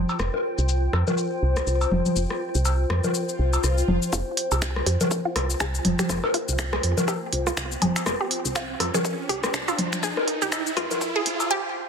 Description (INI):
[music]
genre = minimal techno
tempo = 122 BPM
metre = 4/4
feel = swing 58% on 16ths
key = unclear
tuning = A4 = 440 Hz
[part]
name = woody FM bass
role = bass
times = 0.0-11.4 s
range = F1 to F2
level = -25 LUFS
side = equal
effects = sidechain pumping
[part]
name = downlifter, swell and riser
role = sound effects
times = 3.4-11.5 s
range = none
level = -33 LUFS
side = right 1 dB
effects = none
[part]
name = granular cloud pad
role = texture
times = 0.0-11.5 s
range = F4 to G5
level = -31 LUFS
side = left 1 dB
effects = built-in reverb, sidechain pumping
[part]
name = minimal click drum kit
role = drums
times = 0.1-11.5 s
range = cabasa, finger snaps, hi-hat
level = -29 LUFS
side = left 2 dB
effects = low-pass filter on hats, soft clipping on snare, low-pass filter on snare, low-pass filter on perc, low-pass filter on cymbals
[part]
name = electronic cowbell, rim click, bongos and congas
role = percussion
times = 0.1-11.5 s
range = none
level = -26 LUFS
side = left 1 dB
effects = overdrive
[part]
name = resonant blip pluck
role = riff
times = 4.1-11.6 s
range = F4 to Ab4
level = -29 LUFS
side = right 1 dB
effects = phaser, sidechain pumping, tape echo
[part]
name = electronic kick drum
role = drums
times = 4.1-11.1 s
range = none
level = -35 LUFS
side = equal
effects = high-pass filter on kick, high-pass filter on room
[sound]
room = moderate plate reverb, RT60 1.9 s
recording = dense, heavily limited modern master, high-pass filter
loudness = -22 LUFS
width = side -6 dB against mid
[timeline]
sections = 0.0-4.1 A section; 4.1-11.9 B section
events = swell 3.4-4.1; build-up 4.1-11.9; filter sweep on synth arpeggio sound 4.1-11.9; riser 4.3-11.5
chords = 0.0 F5